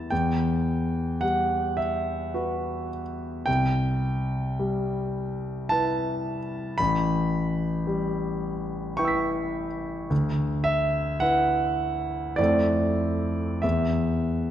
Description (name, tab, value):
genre	classical, impressionist solo piano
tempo	46-57 BPM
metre	3/4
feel	rubato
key	unclear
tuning	A4 = 440 Hz
part	clear concert grand piano	solo	0.0-14.5 s	A1 to B6	-24 LUFS	equal	none
room	wet concert hall reverb, RT60 1.9 s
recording	dark, warm production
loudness	-24 LUFS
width	side -10 dB against mid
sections	0.0-14.5 A section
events	none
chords	0.1 Gmaj7/E; 3.5 Cmaj7; 6.8 A9; 10.1 D69; 12.4 Fmaj7; 13.6 N.C.